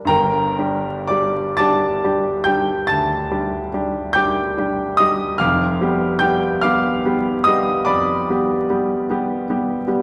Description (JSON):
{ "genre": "classical, romantic nocturne for solo piano", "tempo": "39-51 BPM (dotted quarters)", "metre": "12/8", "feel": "rubato", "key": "unclear", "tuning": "A4 = 440 Hz", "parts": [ { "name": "clear grand piano", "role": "solo", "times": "0.0-10.0 s", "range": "F1 to A6", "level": "-19 LUFS", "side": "equal", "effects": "none" } ], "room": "wet recital hall reverb, RT60 1.3 s", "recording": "recorded in a church or concert hall, vinyl crackle", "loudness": "-19 LUFS", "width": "mono", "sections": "0.1-10.0 A section", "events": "none", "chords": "0.1 Gm; 5.4 G7/F" }